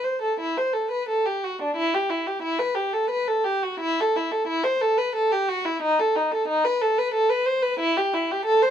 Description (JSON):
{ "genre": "classical, baroque-style suite movement for unaccompanied violin", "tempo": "90 BPM", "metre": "3/4", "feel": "uneven beats, rubato", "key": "E minor", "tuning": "A4 = 440 Hz", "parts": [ { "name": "rich violin", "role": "solo", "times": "0.0-8.7 s", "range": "D4 to C5", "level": "-21 LUFS", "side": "equal", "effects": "none" } ], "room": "moderate studio reverb, RT60 0.7 s", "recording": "dark, warm production", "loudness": "-21 LUFS", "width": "side -9 dB against mid", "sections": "0.0-1.8 A section; 1.8-8.7 B section", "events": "none", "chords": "none" }